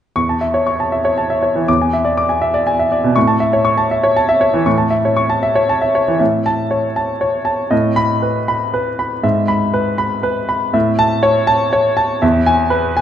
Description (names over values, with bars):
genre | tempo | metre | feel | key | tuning
classical, virtuoso piano study | 120 BPM | 3/4 | rubato | A major | A4 = 440 Hz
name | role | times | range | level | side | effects
clear grand piano | solo | 0.2-13.0 s | E2 to D6 | -13 LUFS | equal | none
room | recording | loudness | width
wet recital hall reverb, RT60 1.6 s | nothing above 10.3 kHz | -13 LUFS | side -10 dB against mid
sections
0.2-6.2 A section; 6.2-13.0 B section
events
none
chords
0.2 A/E; 1.7 E7; 3.2 A; 7.7 B7/A; 9.2 E/G#; 10.7 A; 12.2 E